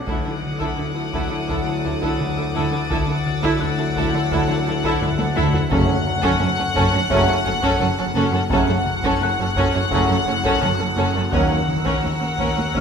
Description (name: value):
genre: cinematic, suspense film score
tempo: 85 BPM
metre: 4/4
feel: straight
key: unclear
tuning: A4 = 441 Hz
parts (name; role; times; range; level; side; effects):
- warm symphonic violin section; melody; 0.0-12.8 s; F#5; -25 LUFS; left 3 dB; none
- mellow French horn section; sustained chords; 0.0-12.8 s; A3-21c to E4; -29 LUFS; left 4 dB; none
- warm trombone section; sustained chords; 0.0-12.8 s; C#3 to F#3; -30 LUFS; right 6 dB; none
- swarming drone; drone; 0.0-12.8 s; F#1 to D#2; -32 LUFS; right 1 dB; built-in reverb
- small celesta; texture; 0.0-12.8 s; F#5 to B6; -32 LUFS; left 5 dB; none
- warm studio violin section; second line; 0.1-12.8 s; A4 to A#4; -28 LUFS; left 1 dB; none
- rich studio viola section; accompaniment; 0.1-12.8 s; C#4 to E4; -25 LUFS; right 2 dB; none
- marimba with hard mallets; riff; 0.1-12.8 s; F#2 to D4; -26 LUFS; left 4 dB; none
- dark studio double bass section; bass; 0.1-12.8 s; F#1 to D#2; -28 LUFS; right 3 dB; none
- warm studio cello section; bass; 0.1-12.8 s; D#2 to D3; -27 LUFS; right 3 dB; none
- solo taiko drums; drums; 0.1-12.8 s; none; -29 LUFS; equal; none
- warm symphonic violin section; texture; 0.1-5.3, 11.3-12.8 s; A#5 to A6; -32 LUFS; left 4 dB; none
- timpani; percussion; 5.7-6.7 s; F#2; -31 LUFS; equal; none
room: wet scoring stage reverb, RT60 1.5 s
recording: minimal, uncompressed stereo recording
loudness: -18 LUFS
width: side -6 dB against mid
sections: 0.0-12.8 A section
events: drum fill 5.0-5.7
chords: 0.1 Dadd9; 5.7 F#m; 11.3 D#m7